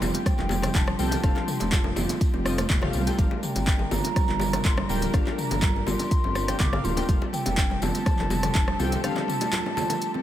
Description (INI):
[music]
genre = afro house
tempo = 123 BPM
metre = 4/4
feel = straight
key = unclear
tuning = A4 = 439 Hz
[part]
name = mellow hollow concert flute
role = melody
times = 0.0-10.2 s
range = G5 to D6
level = -32 LUFS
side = right 1 dB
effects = dub echo
[part]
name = muted studio string section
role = sustained chords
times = 0.0-10.2 s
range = F3 to Bb4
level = -36 LUFS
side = left 1 dB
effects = sidechain pumping
[part]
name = buzzing kalimba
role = arpeggios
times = 0.0-10.2 s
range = F3 to G4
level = -31 LUFS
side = right 2 dB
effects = sidechain pumping, dub echo
[part]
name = dark detuned saw bass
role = bass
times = 0.0-9.0 s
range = D1 to C2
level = -29 LUFS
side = equal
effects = sidechain pumping
[part]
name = bongos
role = percussion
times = 0.0-10.2 s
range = none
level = -35 LUFS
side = left 5 dB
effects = none
[part]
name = congas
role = percussion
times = 0.0-10.2 s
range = none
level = -36 LUFS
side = right 2 dB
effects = none
[part]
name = tambourine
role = percussion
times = 0.0-10.1 s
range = none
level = -40 LUFS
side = left 4 dB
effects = none
[part]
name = deep house drum kit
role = drums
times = 0.1-10.1 s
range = handclaps, hi-hat, rim click, toms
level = -31 LUFS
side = left 1 dB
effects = none
[part]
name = electronic kick drum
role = drums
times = 0.3-8.7 s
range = none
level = -24 LUFS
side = equal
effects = none
[part]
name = warm analog keys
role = stabs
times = 1.0-9.2 s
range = C4 to G5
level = -35 LUFS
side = left 4 dB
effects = chorus, vintage 12-bit sampler grit, sidechain pumping, dub echo
[sound]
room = light reverb, small room ambience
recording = none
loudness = -22 LUFS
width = side -12 dB against mid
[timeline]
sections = 0.0-10.2 A section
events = break 9.0-10.2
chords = 0.0 Fadd9; 3.2 Gm7; 7.1 Fadd9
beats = 0.26 0.75 | 1.24 1.72 2.21 2.70 | 3.19 3.67 4.16 4.65 | 5.14 5.63 6.11 6.60 | 7.09 7.58 8.06 8.55 | 9.04 9.53 10.02